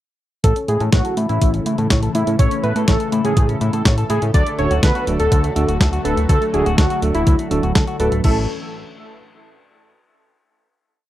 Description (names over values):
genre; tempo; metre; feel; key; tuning
italo disco; 123 BPM; 4/4; straight; A major; A4 = 440 Hz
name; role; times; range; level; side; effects
wide unison lead; melody; 0.4-8.4 s; E4 to D5; -22 LUFS; equal; tape echo
lush unison pad; sustained chords; 0.4-8.5 s; C#3 to C#5; -25 LUFS; left 1 dB; chorus, phaser
electric guitar with an envelope filter; arpeggios; 0.4-8.5 s; F#3 to C#5; -29 LUFS; left 4 dB; low-pass filter, tape echo
fat analog bass; bass; 0.4-8.5 s; D1 to A2; -20 LUFS; equal; none
clean 12-bit digital drum machine; drums; 0.4-8.3 s; crash cymbal, hi-hat, snare drum; -22 LUFS; equal; none
electronic kick drum; drums; 0.4-8.3 s; none; -16 LUFS; equal; none
mellow tine electric piano; stabs; 4.6-8.4 s; A2 to B4; -24 LUFS; right 3 dB; medium tremolo
room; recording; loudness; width
light reverb; dry, close 1970s-style studio recording; -15 LUFS; side -14 dB against mid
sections
0.4-8.2 verse; 8.2-10.2 final chord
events
filter sweep on clean electric guitar 0.4-8.2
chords
0.4 A; 4.3 D; 8.2 A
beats
| 0.44 0.93 1.42 1.90 | 2.39 2.88 3.37 3.85 | 4.34 4.83 5.32 5.80 | 6.29 6.78 7.27 7.76 | 8.24